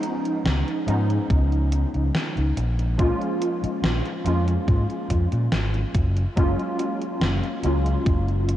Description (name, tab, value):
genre	vaporwave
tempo	71 BPM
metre	4/4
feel	straight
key	F# major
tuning	A4 = 440 Hz
part	warbly lo-fi synth keys	accompaniment	0.0-8.6 s	E#3 to E#4	-26 LUFS	equal	ensemble chorus, vintage 12-bit sampler grit, tape echo
part	gated 80s digital drum machine	drums	0.0-8.6 s	hi-hat, snare drum	-29 LUFS	equal	gated reverb, gated reverb snare, overdrive
part	overdriven fingered electric bass	bass	0.5-8.6 s	F#1 to A#2	-22 LUFS	equal	tube saturation
part	electronic kick drum	drums	1.3-8.2 s	none	-21 LUFS	equal	overdrive
room	light reverb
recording	cassette tape, nothing above 10.6 kHz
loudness	-20 LUFS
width	side -12 dB against mid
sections	0.0-8.6 A section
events	none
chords	0.0 C#9; 2.6 A#m7; 6.0 F#maj7